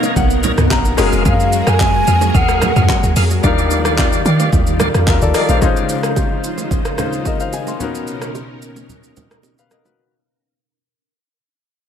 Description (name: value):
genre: amapiano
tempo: 110 BPM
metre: 4/4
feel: straight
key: unclear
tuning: A4 = 439 Hz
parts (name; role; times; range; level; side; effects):
- bright baby grand piano; accompaniment; 0.0-10.1 s; G3 to C6; -21 LUFS; left 7 dB; none
- string machine, cellos; sustained chords; 0.0-10.0 s; Cb3 to D5; -22 LUFS; equal; ensemble chorus
- percussive tonewheel organ; stabs; 0.0-5.6 s; G4 to F5; -23 LUFS; right 1 dB; overdrive, fast rotary speaker, ping-pong delay
- deep log drum bass; bass; 0.0-5.6 s; F1 to Eb3; -16 LUFS; equal; none
- deep house drum kit; drums; 0.0-10.0 s; handclaps, hi-hat, kick drum, rim click, shaker, toms; -18 LUFS; equal; overdrive
- bongos and congas; percussion; 0.0-10.0 s; none; -25 LUFS; right 6 dB; none
- mellow hollow concert flute; melody; 1.3-3.1 s; F5 to Ab5; -18 LUFS; equal; ping-pong delay
room: light reverb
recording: none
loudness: -13 LUFS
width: side -8 dB against mid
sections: 0.0-5.6 A section; 5.6-10.0 B section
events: grand piano fill 0.0-1.3; fade-out 5.6-10.0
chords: 0.0 Cbmaj9; 1.0 Gbmaj9; 3.4 Ebmaj9; 5.6 Dbmaj9; 7.8 Cbmaj9